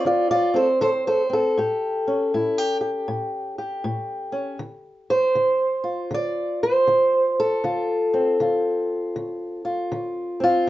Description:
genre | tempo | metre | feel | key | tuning
acoustic country blues, solo or duo | 79 BPM | 4/4 | swing 63% on 8ths | D minor | A4 = 440 Hz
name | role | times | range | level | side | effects
fingerpicked old ladder-braced acoustic guitar | solo | 0.0-10.7 s | A2 to D5 | -20 LUFS | equal | none
room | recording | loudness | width
moderate studio reverb, RT60 0.6 s | worn, warbling old tape, cassette tape, warbly pitch drift, nothing above 7.8 kHz | -20 LUFS | side -15 dB against mid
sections
0.0-4.6 A section; 4.6-10.7 B section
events
steel-string acoustic guitar solo 4.6-10.7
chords
0.0 Dm7; 1.6 A7; 4.6 Dm7

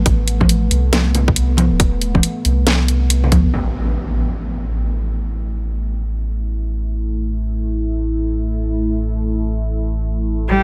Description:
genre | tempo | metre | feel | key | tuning
deep dubstep | 138 BPM | 4/4 | swing 62% on 16ths, half-time | A minor | A4 = 435 Hz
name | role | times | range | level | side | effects
deep dark ambient pad | sustained chords | 0.0-10.6 s | A3 to E4 | -27 LUFS | equal | chorus, built-in reverb, vintage 12-bit sampler grit
soft dub sub bass | bass | 0.0-10.6 s | E1 to D2 | -21 LUFS | equal | none
electronic kick drum | drums | 0.1-3.4 s | none | -18 LUFS | equal | studio reverb
garage drum kit | drums | 0.1-3.4 s | hi-hat, snare drum | -21 LUFS | equal | studio reverb
congas | percussion | 0.4-3.4 s | none | -24 LUFS | equal | none
impact | sound effects | 3.5-5.3 s | none | -27 LUFS | equal | none
rich cello | melody | 10.5-10.6 s | G3 | -16 LUFS | equal | none
room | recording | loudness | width
digital ambience | none | -18 LUFS | mono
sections
0.0-3.5 A section; 3.5-10.6 B section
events
impact 3.5-5.3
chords
0.0 Am; 3.5 A5

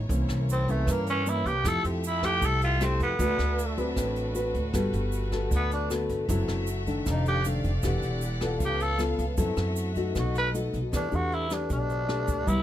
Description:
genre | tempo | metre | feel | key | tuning
bossa nova | 155 BPM | 4/4 | straight | E minor | A4 = 438 Hz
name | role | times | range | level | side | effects
nylon-string guitar | accompaniment | 0.0-12.6 s | F2 to B4 | -30 LUFS | left 2 dB | none
warm studio violin section | sustained chords | 0.0-10.9 s | A3 to F#5 | -38 LUFS | left 2 dB | none
upright bass | bass | 0.0-12.6 s | E1 to G2 | -29 LUFS | equal | none
jazz brush drum kit | drums | 0.1-12.6 s | hi-hat, kick drum, rim click | -34 LUFS | equal | none
egg shaker | percussion | 0.1-12.6 s | none | -44 LUFS | right 10 dB | none
growling tenor saxophone | melody | 0.5-12.6 s | A3 to B4 | -28 LUFS | equal | none
room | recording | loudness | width
little or no reverb | close, detailed microphones | -25 LUFS | side -12 dB against mid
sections
0.0-10.9 A section; 10.9-12.6 B section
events
tenor saxophone solo 0.0-10.9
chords
0.1 C7b9; 1.6 Fmaj9; 3.2 D13; 4.7 Gmaj9; 6.3 F#m7b5; 7.1 F13; 7.8 Em11; 8.6 C#aug7; 9.4 F#m7b5; 10.2 B7; 10.9 Em7

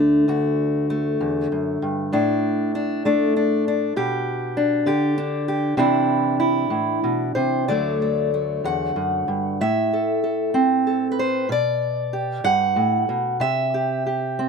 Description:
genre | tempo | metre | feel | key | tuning
folk, solo fingerstyle acoustic guitar | 60-66 BPM (dotted quarters) | 6/8 | rubato | D mixolydian | A4 = 440 Hz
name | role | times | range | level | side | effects
fingerpicked steel-string acoustic guitar | solo | 0.0-14.5 s | D2 to F#5 | -19 LUFS | equal | none
room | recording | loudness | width
moderate studio reverb, RT60 0.6 s | none | -19 LUFS | side -5 dB against mid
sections
0.3-7.7 A section; 7.7-14.5 B section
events
none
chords
0.3 D; 2.1 Asus4; 4.0 G/B; 5.8 Cadd9; 7.7 D; 9.6 Am; 11.5 G/B; 13.4 C

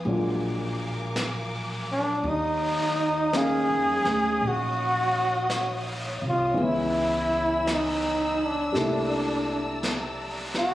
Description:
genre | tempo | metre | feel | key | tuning
jazz ballad | 55 BPM | 4/4 | swing 67% on 8ths | unclear | A4 = 438 Hz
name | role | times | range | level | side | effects
dark grand piano | accompaniment | 0.0-10.7 s | Fb3 to F5 | -30 LUFS | left 1 dB | none
warm studio string section | sustained chords | 0.0-10.7 s | Bb4 to Fb6 | -36 LUFS | left 1 dB | none
upright bass | bass | 0.1-10.7 s | Bb1 to F2 | -33 LUFS | right 1 dB | none
vintage brush drum kit | drums | 0.1-10.7 s | brushed snare drum, hi-hat, snare drum | -34 LUFS | equal | none
breathy flugelhorn | melody | 1.9-10.7 s | D4 to Ab4 | -24 LUFS | equal | none
room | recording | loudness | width
light reverb | recorded on a phone in the room, studio reverb | -23 LUFS | side -14 dB against mid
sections
0.0-2.2 A section; 2.2-10.7 B section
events
flugelhorn solo 0.0-2.2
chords
0.1 Bb7b13; 2.2 Ebm9; 6.6 Dbm7; 8.7 C13

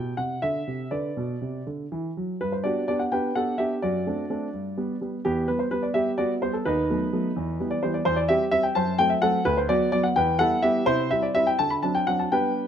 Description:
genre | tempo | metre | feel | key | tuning
classical-period piano sonatina | 84 BPM (dotted quarters) | 6/8 | straight | G major | A4 = 437 Hz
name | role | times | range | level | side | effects
warm grand piano | solo | 0.0-12.7 s | D2 to B5 | -22 LUFS | equal | none
room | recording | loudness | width
moderate large studio reverb, RT60 1.4 s | close, detailed microphones | -22 LUFS | side -8 dB against mid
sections
0.0-2.4 A section; 2.4-12.7 B section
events
none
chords
0.2 Cadd9; 0.9 Bm; 1.7 D; 2.4 G; 3.8 D7/F#; 4.5 G; 5.2 Em; 6.7 B7/D#; 7.4 Em; 8.1 C/E; 8.8 F#dim; 9.5 Bm/D; 10.2 Em; 10.9 C; 11.6 D7

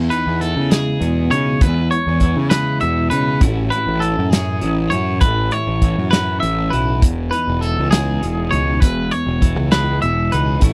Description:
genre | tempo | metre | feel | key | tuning
math rock and midwest emo | 67 BPM (dotted quarters) | 6/8 | straight | E major | A4 = 440 Hz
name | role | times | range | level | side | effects
twelve-string electric guitar | accompaniment | 0.0-10.7 s | E2 to F#4 | -25 LUFS | equal | harmonic tremolo
fuzz picked electric bass | bass | 0.0-10.7 s | E1 to C#3 | -22 LUFS | equal | overdrive
twangy electric guitar | arpeggios | 0.1-10.6 s | G#4 to E5 | -23 LUFS | equal | none
loose indie drum kit | drums | 0.1-10.7 s | hi-hat, kick drum, snare drum | -18 LUFS | equal | none
room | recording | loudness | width
little or no reverb | dry, close 1970s-style studio recording | -17 LUFS | mono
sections
0.0-10.7 A section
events
none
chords
0.0 Emaj7; 3.4 A69; 7.0 Emaj7

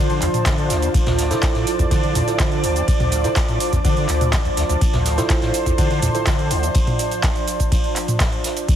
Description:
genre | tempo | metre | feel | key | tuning
acid house | 124 BPM | 4/4 | straight | D minor | A4 = 443 Hz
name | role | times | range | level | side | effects
lush unison pad | sustained chords | 0.0-8.7 s | F3 to D5 | -27 LUFS | left 1 dB | chorus, sidechain pumping
overdriven acid bass | riff | 0.0-6.7 s | D2 to D3 | -23 LUFS | equal | ensemble chorus, sidechain pumping, tape echo
warbly tape-like pad | texture | 0.0-8.8 s | F4 to A5 | -25 LUFS | right 1 dB | chorus, built-in reverb, phaser, sidechain pumping
booming analog drum machine | drums | 0.1-8.8 s | cabasa, handclaps, hi-hat, ride cymbal, toms | -24 LUFS | right 1 dB | none
jazz brush drum kit | drums | 0.2-8.8 s | hi-hat, snare drum | -34 LUFS | equal | high-pass filter on hats, high-pass filter on snare, high-pass filter on room
electronic kick drum | drums | 0.5-8.8 s | none | -20 LUFS | equal | none
tine electric piano | stabs | 1.3-6.3 s | E4 to C5 | -27 LUFS | right 4 dB | tape echo
room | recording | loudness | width
light reverb, digital ambience | heavily compressed radio sound | -16 LUFS | side -10 dB against mid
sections
0.0-8.8 A section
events
none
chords
0.0 Dm7

